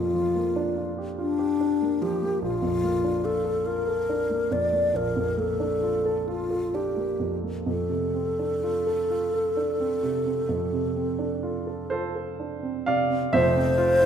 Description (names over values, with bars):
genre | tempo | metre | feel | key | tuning
classical, impressionist duo for alto flute and grand piano | 41-49 BPM (dotted quarters) | 12/8 | rubato | F major | A4 = 440 Hz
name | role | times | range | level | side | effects
mellow hollow alto flute | melody | 0.0-14.1 s | D4 to D5 | -25 LUFS | left 2 dB | none
warm grand piano | accompaniment | 0.0-14.1 s | F1 to F5 | -27 LUFS | right 3 dB | none
room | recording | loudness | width
moderate recital hall reverb, RT60 1.6 s | none | -23 LUFS | side -8 dB against mid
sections
0.0-13.3 A section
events
none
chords
0.0 Gm7/F; 2.4 Bbmaj7; 7.7 F6; 13.3 Fmaj7(no3)